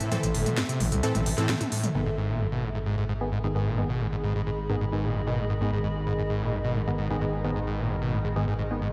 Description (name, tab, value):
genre	driving peak-time techno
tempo	131 BPM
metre	4/4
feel	straight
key	G# minor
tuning	A4 = 437 Hz
part	growling FM bass	bass	0.0-8.9 s	G1 to A2	-34 LUFS	equal	none
part	techno drum kit	drums	0.0-2.0 s	crash cymbal, hi-hat, snare drum, toms	-32 LUFS	equal	low-pass filter on hats, low-pass filter on toms, low-pass filter on snare, low-pass filter on cymbals, low-pass filter on room
part	granular cloud pad	texture	0.0-8.9 s	G#4 to C6	-38 LUFS	equal	built-in reverb
part	screaming distorted acid line	riff	0.1-8.9 s	F#2 to C3	-32 LUFS	equal	distortion, chorus, tape echo
part	supersaw stab	stabs	0.1-8.8 s	D#3 to A4	-36 LUFS	equal	low-pass filter, tape echo
part	analog drone	drone	4.1-8.9 s	G#2 to D#3	-38 LUFS	equal	chorus
room	moderate lush hall reverb, RT60 2.2 s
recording	dreamy mix soaked in reverb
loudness	-28 LUFS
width	mono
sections	0.0-1.9 A section; 1.9-8.9 B section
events	drum fill 1.5-1.9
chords	0.0 Am; 1.9 G#m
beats	| 0.12 0.57 1.03 1.49 | 1.95 2.41 2.86 3.32 | 3.78 4.24 4.70 5.15 | 5.61 6.07 6.53 6.99 | 7.44 7.90 8.36 8.82